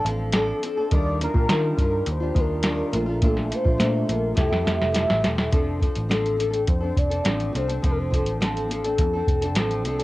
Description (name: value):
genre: indie pop, bedroom pop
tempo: 104 BPM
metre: 4/4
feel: straight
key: F major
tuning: A4 = 435 Hz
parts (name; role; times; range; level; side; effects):
- flamenco guitar; accompaniment; 0.0-10.0 s; Bb2 to A4; -26 LUFS; equal; lush chorus, vibrato effect, cassette tape, plate reverb
- vintage muted picked electric bass; bass; 0.0-10.0 s; E1 to Eb3; -27 LUFS; equal; none
- soft vintage rhythm box; drums; 0.1-10.0 s; hi-hat, kick drum, snare drum; -23 LUFS; equal; none
- warm velvety synth lead; melody; 0.4-9.8 s; A4 to D5; -28 LUFS; left 2 dB; analog chorus, cassette tape, plate reverb
room: light reverb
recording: home recording on cassette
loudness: -20 LUFS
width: side -18 dB against mid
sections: 0.0-5.5 A section; 5.5-10.0 B section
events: drum fill 4.4-5.5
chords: 0.0 F6; 0.9 Ebmaj9; 2.9 Bbmaj7; 4.4 Fmaj9; 5.5 F6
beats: 0.34 | 0.91 1.49 2.07 2.64 | 3.22 3.80 4.37 4.95 | 5.53 6.10 6.68 7.25 | 7.83 8.41 8.99 9.56